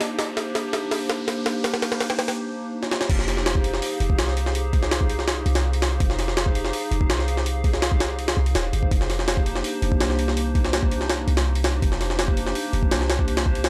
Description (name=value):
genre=drum and bass, jungle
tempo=165 BPM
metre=4/4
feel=straight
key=F minor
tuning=A4 = 441 Hz
part: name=warbly tape-like pad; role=sustained chords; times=0.0-13.7 s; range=Bb3 to F5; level=-30 LUFS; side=equal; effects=chorus, built-in reverb, vintage 12-bit sampler grit
part: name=jungle sampler-style drum kit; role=drums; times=0.0-13.7 s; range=crash cymbal, hi-hat, kick drum, snare drum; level=-25 LUFS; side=equal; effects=overdrive
part: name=riser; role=sound effects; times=0.0-2.4 s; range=none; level=-40 LUFS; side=equal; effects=none
part: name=warm 808-style bass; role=bass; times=3.1-13.7 s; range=Eb1 to C2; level=-27 LUFS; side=equal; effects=none
room=light reverb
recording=dry, gritty hardware recording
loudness=-23 LUFS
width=mono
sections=0.0-3.1 A section; 3.1-13.7 B section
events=build-up 0.0-3.1; drum fill 0.0-2.4, 2.8; riser 0.0-2.4; break 2.4-3.1; drop 3.1-13.7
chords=0.0 Cm7; 3.1 Fm7; 8.9 Cm7/F